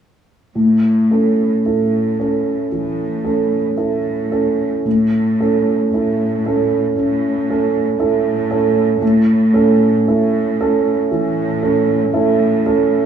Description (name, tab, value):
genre	classical, romantic movement for piano and orchestra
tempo	54-60 BPM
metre	4/4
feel	rubato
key	A major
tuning	A4 = 444 Hz
part	warm grand piano	melody	0.6-13.1 s	A2 to A4	-14 LUFS	right 2 dB	none
part	rich studio cello section	bass	0.6-13.1 s	A2	-24 LUFS	equal	none
room	light reverb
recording	small room ambience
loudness	-14 LUFS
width	side -8 dB against mid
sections	0.6-13.1 A section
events	none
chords	0.6 A